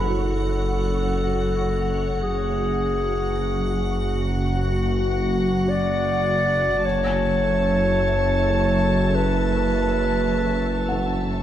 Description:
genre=cinematic, suspense film score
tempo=52 BPM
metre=4/4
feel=straight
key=F# minor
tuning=A4 = 440 Hz
part: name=warm chamber violin section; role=melody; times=0.0-11.4 s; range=F#5 to A5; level=-32 LUFS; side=left 3 dB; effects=none
part: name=warm clarinet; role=second line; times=0.0-11.2 s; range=F#4 to D5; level=-24 LUFS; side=left 1 dB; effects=none
part: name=soft additive organ-like pad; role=sustained chords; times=0.0-11.4 s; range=F#4 to C#6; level=-32 LUFS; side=right 1 dB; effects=ensemble chorus, built-in reverb, phaser
part: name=clear chamber double bass section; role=bass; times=0.0-11.4 s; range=F#1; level=-27 LUFS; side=right 1 dB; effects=none
part: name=dark studio cello section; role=bass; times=0.0-11.4 s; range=F#2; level=-28 LUFS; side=right 2 dB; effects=none
part: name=analog drone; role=drone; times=0.0-11.4 s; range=F#1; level=-26 LUFS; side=equal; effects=chorus
part: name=impact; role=sound effects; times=0.0-2.2 s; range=none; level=barely audible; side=none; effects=none
part: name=felt-muted upright piano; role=texture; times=0.0-11.4 s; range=F#5 to B5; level=-35 LUFS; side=right 2 dB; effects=none
room=moderate recital hall reverb, RT60 1.5 s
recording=dark, warm production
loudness=-19 LUFS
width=side -11 dB against mid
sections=0.0-11.4 A section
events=impact 0.0-2.2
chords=0.0 F#m; 6.8 A/F#

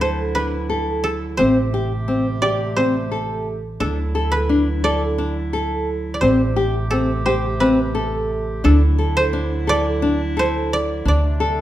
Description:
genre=contemporary instrumental, chamber music in an uneven meter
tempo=174 BPM (eighths)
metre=7/8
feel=straight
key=D mixolydian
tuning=A4 = 439 Hz
part: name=koto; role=melody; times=0.0-11.6 s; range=A4 to D5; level=-23 LUFS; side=right 1 dB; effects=none
part: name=mellow woodwind section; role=sustained chords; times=0.0-11.6 s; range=C3 to G4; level=-28 LUFS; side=right 2 dB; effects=none
part: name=nylon-string guitar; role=arpeggios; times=0.0-11.6 s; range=C4 to A4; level=-21 LUFS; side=left 2 dB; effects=none
part: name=upright bass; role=bass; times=0.0-11.6 s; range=A1 to D2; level=-22 LUFS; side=right 1 dB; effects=none
room=moderate recital hall reverb, RT60 1.4 s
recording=dark, warm production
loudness=-17 LUFS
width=side -13 dB against mid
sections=0.0-11.6 A section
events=none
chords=0.0 Dadd9; 1.4 Am7; 3.8 Dadd9; 6.2 Am7; 8.6 Dadd9; 11.1 D7

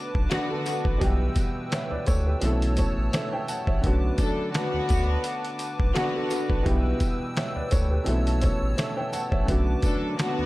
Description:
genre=hip hop, boom-bap hip-hop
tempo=85 BPM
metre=4/4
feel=swing 55% on 16ths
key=B minor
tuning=A4 = 440 Hz
part: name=warm upright piano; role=accompaniment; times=0.0-10.5 s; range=B2 to A5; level=-29 LUFS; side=right 1 dB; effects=cassette tape
part: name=hollow soft pad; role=sustained chords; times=0.0-10.5 s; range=B4 to E6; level=-35 LUFS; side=equal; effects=chorus
part: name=saturated sub bass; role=bass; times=0.1-10.4 s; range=A1 to D2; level=-25 LUFS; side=equal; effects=transformer saturation
part: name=trip hop sampler-style drum kit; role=drums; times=0.1-10.4 s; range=hi-hat, kick drum, snare drum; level=-27 LUFS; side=equal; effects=none
part: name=warm studio string section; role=stabs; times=0.3-10.5 s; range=D3 to A4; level=-30 LUFS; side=left 1 dB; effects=tape echo
part: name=tambourine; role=percussion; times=0.7-10.0 s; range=none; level=-44 LUFS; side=left 1 dB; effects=none
room=little or no reverb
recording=dry, gritty hardware recording, lossy compression artefacts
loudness=-23 LUFS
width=side -18 dB against mid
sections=0.0-10.5 A section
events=none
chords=0.0 Bm7; 1.0 Em/B; 2.4 A; 3.8 Bm7; 6.7 Em/B; 8.1 A; 9.5 Bm7

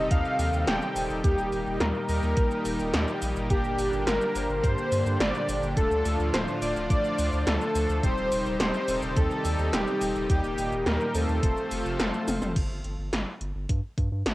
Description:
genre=synthwave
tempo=106 BPM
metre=4/4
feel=straight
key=G minor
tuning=A4 = 441 Hz
part: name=soft supersaw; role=melody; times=0.0-12.0 s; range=G4 to G5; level=-30 LUFS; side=equal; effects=cassette tape, tape echo
part: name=soft synth bell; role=second line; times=0.0-12.0 s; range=G4 to G5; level=-38 LUFS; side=left 1 dB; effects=none
part: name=lush unison pad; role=sustained chords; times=0.0-12.6 s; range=A2 to A4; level=-33 LUFS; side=equal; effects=chorus, sidechain pumping, cassette tape
part: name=analog synth brass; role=stabs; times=0.0-12.5 s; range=G3 to C5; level=-33 LUFS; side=left 2 dB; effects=chorus, cassette tape
part: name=round analog bass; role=bass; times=0.0-14.3 s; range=D1 to G2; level=-30 LUFS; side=equal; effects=none
part: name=80s electronic pad drums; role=drums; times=0.1-14.3 s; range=crash cymbal, hi-hat, shaker, snare drum, toms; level=-31 LUFS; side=equal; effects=gated reverb on snare and toms, cassette tape
part: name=electronic kick drum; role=drums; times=0.1-14.1 s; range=none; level=-25 LUFS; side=equal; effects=cassette tape
room=light reverb, digital ambience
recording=home recording on cassette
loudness=-24 LUFS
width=side -18 dB against mid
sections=0.0-12.6 A section; 12.6-14.3 B section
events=drum fill 12.3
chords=0.0 Cm/Eb; 1.2 Eb; 3.5 Gm; 5.8 Dm; 8.0 Cm/Eb; 10.3 Eb; 11.4 F; 12.6 N.C.

